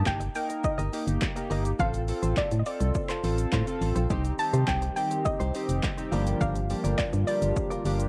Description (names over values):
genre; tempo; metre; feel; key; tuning
dance-pop; 104 BPM; 4/4; straight; C dorian; A4 = 440 Hz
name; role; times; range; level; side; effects
soft round pluck; melody; 0.0-7.8 s; D5 to A5; -34 LUFS; equal; chorus, cassette tape, analog delay
chorused polysynth; accompaniment; 0.0-8.1 s; F3 to Bb4; -35 LUFS; equal; sidechain pumping, cassette tape
direct-recorded clean electric guitar; riff; 0.0-8.0 s; Eb4 to Eb5; -39 LUFS; equal; lush chorus, cassette tape
organ-like FM bass; bass; 0.0-8.1 s; F1 to C3; -29 LUFS; equal; sidechain pumping
punchy analog drum machine; drums; 0.1-8.1 s; handclaps, hi-hat, kick drum, shaker, snare drum; -34 LUFS; equal; overdrive, cassette tape
warm analog pad; sustained chords; 4.1-8.1 s; D3 to G4; -38 LUFS; equal; chorus, sidechain pumping, cassette tape
room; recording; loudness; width
light reverb; home recording on cassette; -28 LUFS; mono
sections
0.0-8.1 A section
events
none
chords
0.0 Eb/G; 1.8 F/A; 4.1 Cm; 6.1 Gm7